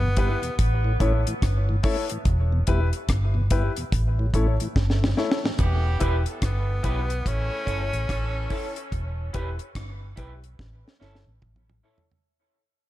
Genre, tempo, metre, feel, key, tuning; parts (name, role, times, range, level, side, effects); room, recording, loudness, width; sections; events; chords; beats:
dub reggae; 72 BPM; 4/4; swing 61% on 16ths; E dorian; A4 = 440 Hz
clear tenor saxophone; melody; 0.0-0.6, 6.5-8.9 s; B3 to C#4; -33 LUFS; equal; dub echo
mellow tonewheel organ; accompaniment; 0.0-5.5 s; E2 to E4; -32 LUFS; left 2 dB; slow rotary speaker, dub echo
vintage muted fingered electric bass; bass; 0.0-11.8 s; E1 to B1; -24 LUFS; equal
dark upright piano; stabs; 0.2-12.0 s; E4 to C#5; -32 LUFS; left 5 dB; dub echo
deep reggae drum kit; drums; 0.2-12.3 s; hi-hat, kick drum, rim click, snare drum, toms; -26 LUFS; equal
warm horn section; second line; 5.6-8.7 s; C#3 to A4; -36 LUFS; right 2 dB; dub echo
electric guitar through a small old amp; accompaniment; 6.0-12.0 s; C#4 to B4; -38 LUFS; right 7 dB; analog chorus, dub echo
small room reverb; -22 LUFS; side -15 dB against mid
0.0-5.6 A section; 5.6-12.3 B section
break 0.0-5.6, 8.9-12.3; drum fill 4.8-5.6, 10.6-12.3; fade-out 5.6-12.3
0.0 Em; 0.6 A; 2.3 Em; 3.9 A; 5.6 Em; 7.3 A; 8.9 Em; 10.6 A
0.58 1.42 | 2.25 3.09 3.92 4.75 | 5.59 6.42 7.25 8.09 | 8.92 9.76 10.59 11.42